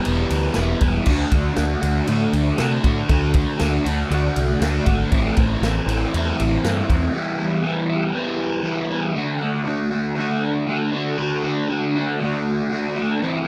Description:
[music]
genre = garage rock duo or trio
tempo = 119 BPM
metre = 4/4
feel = straight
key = unclear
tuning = A4 = 438 Hz
[part]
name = crunchy overdriven guitar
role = riff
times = 0.0-13.5 s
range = A2 to F#4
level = -23 LUFS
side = equal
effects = phaser
[part]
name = vintage drum kit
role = drums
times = 0.0-7.0 s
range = crash cymbal, kick drum, ride cymbal, snare drum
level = -26 LUFS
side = equal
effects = none
[part]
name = growling picked electric bass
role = bass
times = 0.1-7.1 s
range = E1 to C3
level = -25 LUFS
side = equal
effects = overdrive
[sound]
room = little or no reverb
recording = none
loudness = -21 LUFS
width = mono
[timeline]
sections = 0.0-9.2 A section; 9.2-13.5 A section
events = break 7.1-9.2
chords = 0.0 Em; 1.1 D; 5.1 Am; 7.1 Em; 9.2 D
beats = 0.07 0.58 | 1.08 1.59 2.09 2.60 | 3.10 3.61 4.11 4.62 | 5.13 5.63 6.14 6.64 | 7.15 7.65 8.16 8.66 | 9.17 9.68 10.18 10.68 | 11.19 11.69 12.20 12.70 | 13.21

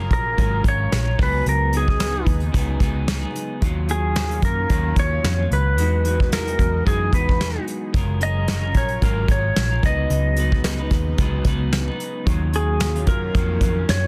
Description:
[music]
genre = indie pop, bedroom pop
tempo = 111 BPM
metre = 4/4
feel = swing 55% on 16ths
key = F# major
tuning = A4 = 439 Hz
[part]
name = electric guitar through a small old amp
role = accompaniment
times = 0.0-14.1 s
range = C#3 to B4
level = -32 LUFS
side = equal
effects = subtle chorus, warbly pitch drift
[part]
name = lush unison pad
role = sustained chords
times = 0.0-14.1 s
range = C#3 to A#4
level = -35 LUFS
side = equal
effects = chorus, phaser
[part]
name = vintage muted picked electric bass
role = bass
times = 0.0-14.1 s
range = F#1 to F#2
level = -25 LUFS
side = equal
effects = none
[part]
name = clean lap steel guitar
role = melody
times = 0.1-14.1 s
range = G#4 to D#5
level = -27 LUFS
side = equal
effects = lush chorus
[part]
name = soft brush drum kit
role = drums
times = 0.1-14.0 s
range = hi-hat, kick drum, snare drum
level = -24 LUFS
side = equal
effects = soft clipping on snare
[sound]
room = light reverb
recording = dense, heavily limited modern master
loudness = -21 LUFS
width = mono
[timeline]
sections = 0.0-14.1 A section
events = none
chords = 0.0 F#maj9; 1.2 C#9sus4; 3.6 D#m9; 5.8 Emaj9; 7.9 F#maj9; 9.8 C#9sus4; 12.3 D#m9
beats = 0.38 0.92 | 1.46 2.00 2.54 3.08 | 3.62 4.16 4.70 5.24 | 5.78 6.32 6.86 7.40 | 7.94 8.48 9.03 9.57 | 10.11 10.65 11.19 11.73 | 12.27 12.81 13.35 13.89

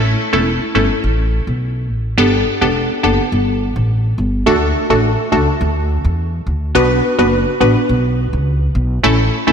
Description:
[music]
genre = dancehall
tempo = 105 BPM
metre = 4/4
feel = straight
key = D major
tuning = A4 = 442 Hz
[part]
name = wavetable chord stab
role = accompaniment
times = 0.0-9.5 s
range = A3 to B4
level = -15 LUFS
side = equal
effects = none
[part]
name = upright bass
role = bass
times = 0.0-9.5 s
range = E1 to E2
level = -16 LUFS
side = equal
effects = none
[sound]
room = wet lush hall reverb, RT60 3.0 s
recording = dreamy mix soaked in reverb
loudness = -13 LUFS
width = side -7 dB against mid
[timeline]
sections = 0.0-4.5 A section; 4.5-9.5 B section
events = none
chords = 0.0 A; 2.2 Gadd9; 4.5 D; 6.8 Bm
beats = 0.46 1.04 1.61 | 2.18 2.75 3.32 3.89 | 4.46 5.04 5.61 6.18 | 6.75 7.32 7.89 8.46 | 9.04

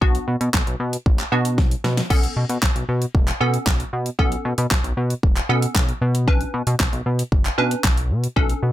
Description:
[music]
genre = dance-pop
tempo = 115 BPM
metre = 4/4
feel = straight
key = unclear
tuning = A4 = 440 Hz
[part]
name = wavetable chord stab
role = accompaniment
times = 0.0-8.7 s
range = B3 to B4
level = -24 LUFS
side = right 1 dB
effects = sidechain pumping
[part]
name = chorused synth bass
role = bass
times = 0.0-8.7 s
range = E1 to B2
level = -22 LUFS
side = equal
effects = sidechain pumping
[part]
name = pop drum kit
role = drums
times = 0.0-8.6 s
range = crash cymbal, handclaps, hi-hat, kick drum, snare drum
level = -20 LUFS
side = equal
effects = none
[sound]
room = little or no reverb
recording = none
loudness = -18 LUFS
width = side -14 dB against mid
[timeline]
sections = 0.0-8.7 A section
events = drum fill 1.6-2.1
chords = 0.0 D6; 2.1 Aadd9; 6.3 Bmadd9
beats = | 0.02 0.54 1.06 1.58 | 2.10 2.63 3.15 3.67 | 4.19 4.71 5.24 5.76 | 6.28 6.80 7.32 7.84 | 8.37

